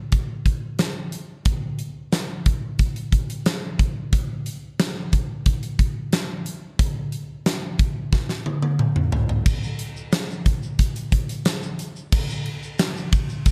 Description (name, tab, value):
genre	pop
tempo	90 BPM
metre	4/4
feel	straight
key	none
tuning	none
part	huge arena drum kit	drums	0.1-13.5 s	crash cymbal, hi-hat, kick drum, ride cymbal, snare drum, toms	-24 LUFS	equal	none
part	tube shaker	percussion	9.5-13.5 s	none	-45 LUFS	equal	none
room	little or no reverb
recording	none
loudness	-24 LUFS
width	mono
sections	0.0-9.5 A section; 9.5-12.1 B section; 12.1-13.5 C section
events	drum fill 8.1-9.5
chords	none